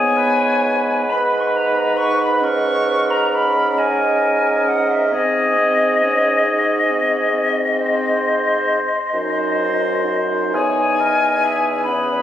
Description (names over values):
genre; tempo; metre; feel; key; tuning
classical, slow romantic movement for wind quintet; 45 BPM (dotted quarters); 12/8; rubato; unclear; A4 = 441 Hz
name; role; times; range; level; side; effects
hollow concert flute; melody; 0.0-12.2 s; D#5 to C#6; -19 LUFS; left 3 dB; none
warm oboe; second line; 0.0-12.2 s; G#4 to B#4; -23 LUFS; left 1 dB; none
dark clarinet; accompaniment; 0.0-12.2 s; B4 to F#5; -23 LUFS; right 3 dB; none
warm French horn; accompaniment; 0.0-12.2 s; B3 to D#4; -27 LUFS; right 1 dB; none
warm bassoon; bass; 0.0-12.2 s; E2 to G#2; -21 LUFS; right 1 dB; none
room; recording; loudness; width
moderate concert hall reverb, RT60 2.4 s; recorded on a phone in the room, club reverb; -15 LUFS; side -11 dB against mid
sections
0.0-12.2 A section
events
none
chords
0.0 G#m; 5.1 G#7; 10.5 C#m/E